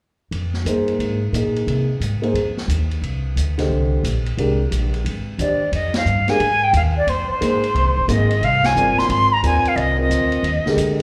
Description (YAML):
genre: modal jazz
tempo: 178 BPM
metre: 4/4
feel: swing 65% on 8ths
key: F dorian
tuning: A4 = 440 Hz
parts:
  - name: upright bass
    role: bass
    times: 0.3-11.0 s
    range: F1 to C3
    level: -23 LUFS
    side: equal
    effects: none
  - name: vintage drum kit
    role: drums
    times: 0.3-11.0 s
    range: hi-hat, ride cymbal, snare drum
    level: -33 LUFS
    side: equal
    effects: none
  - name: dark grand piano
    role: accompaniment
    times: 0.7-11.0 s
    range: D3 to Eb5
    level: -24 LUFS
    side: equal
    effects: slapback echo
  - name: silver concert flute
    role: melody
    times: 5.4-11.0 s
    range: C5 to C6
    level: -21 LUFS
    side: equal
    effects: slapback echo
room: light reverb, studio ambience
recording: live gig heard through the venue's PA, club reverb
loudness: -19 LUFS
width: mono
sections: 0.3-5.7 A section; 5.7-11.0 B section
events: band accent 5.9, 8.6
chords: 0.3 Fm7